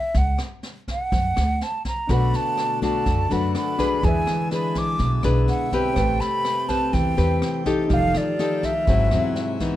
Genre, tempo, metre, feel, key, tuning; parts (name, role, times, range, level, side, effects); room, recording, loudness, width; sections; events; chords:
bossa nova; 124 BPM; 4/4; straight; E minor; A4 = 440 Hz
breathy mellow silver concert flute; melody; 0.0-9.6 s; D5 to D6; -25 LUFS; right 2 dB
upright bass; bass; 0.1-9.3 s; F1 to F#2; -23 LUFS; equal
jazz brush drum kit; drums; 0.1-9.7 s; kick drum, rim click, snare drum; -28 LUFS; equal
nylon-string guitar; accompaniment; 2.1-9.8 s; G#2 to B4; -24 LUFS; left 3 dB
warm baby grand piano; accompaniment; 2.1-9.8 s; C4 to G5; -32 LUFS; right 1 dB
pipe organ, plenum; sustained chords; 2.1-9.8 s; C3 to G4; -32 LUFS; left 2 dB
light reverb; dark, warm production; -19 LUFS; side -13 dB against mid
0.0-9.8 A section
0.1 C#sus4; 1.1 Daug; 2.1 Bm7; 4.0 E7; 6.0 Am9; 7.9 F9; 8.9 G#7alt